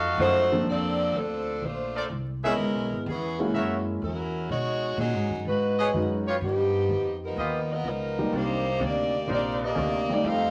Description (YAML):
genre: jazz, big band swing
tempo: 125 BPM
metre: 4/4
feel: swing 68% on 8ths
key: unclear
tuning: A4 = 440 Hz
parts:
  - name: hollow-body jazz guitar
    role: accompaniment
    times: 0.0-0.5, 8.3-10.5 s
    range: C3 to G4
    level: -36 LUFS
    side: equal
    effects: none
  - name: bright trumpet section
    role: stabs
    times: 0.0-10.0 s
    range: Eb4 to F5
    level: -32 LUFS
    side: equal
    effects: none
  - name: upright bass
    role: bass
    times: 0.0-10.5 s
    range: Ab1 to B2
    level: -34 LUFS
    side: equal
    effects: none
  - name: warm saxophone section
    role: melody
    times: 0.2-10.5 s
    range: Fb3 to F5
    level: -29 LUFS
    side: equal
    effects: none
  - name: warm concert grand piano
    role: accompaniment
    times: 0.5-10.5 s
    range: F3 to Eb5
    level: -31 LUFS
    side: equal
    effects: none
room: wet studio reverb, RT60 0.8 s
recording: vinyl crackle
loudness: -27 LUFS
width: mono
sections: 0.7-10.5 A section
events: none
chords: 0.0 F7b9; 0.7 Bbmaj9; 2.6 Dbm7; 3.5 Gb7; 4.5 B69; 6.4 G7alt; 8.3 Cm9